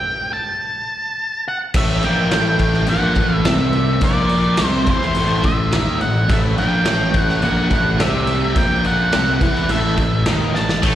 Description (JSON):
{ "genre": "quiet-loud alternative rock", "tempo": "106 BPM", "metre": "4/4", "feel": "straight", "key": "A dorian", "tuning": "A4 = 440 Hz", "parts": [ { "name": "octave-fuzz lead guitar", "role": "melody", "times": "0.0-10.9 s", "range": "C5 to A5", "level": "-21 LUFS", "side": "right 1 dB", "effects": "distortion, slapback echo, plate reverb" }, { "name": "fuzz picked electric bass", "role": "bass", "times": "1.7-10.9 s", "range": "A1 to E2", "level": "-19 LUFS", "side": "equal", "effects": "overdrive" }, { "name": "raw garage drum kit", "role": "drums", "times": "1.7-10.9 s", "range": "crash cymbal, kick drum, snare drum", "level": "-20 LUFS", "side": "equal", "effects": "none" }, { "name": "fuzz guitar", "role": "riff", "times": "1.8-10.9 s", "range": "A2 to E4", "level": "-22 LUFS", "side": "equal", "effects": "distortion, slapback echo" }, { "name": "scooped high-gain guitar", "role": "riff", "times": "10.8-10.9 s", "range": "A2 to A3", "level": "-19 LUFS", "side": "equal", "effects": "distortion" } ], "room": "light reverb", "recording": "live gig heard through the venue's PA, recital hall reverb", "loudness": "-15 LUFS", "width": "side -12 dB against mid", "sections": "0.0-1.7 A section; 1.7-10.9 B section", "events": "stop 0.0-1.7; drum fill 10.5", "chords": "0.0 N.C.; 1.7 Am" }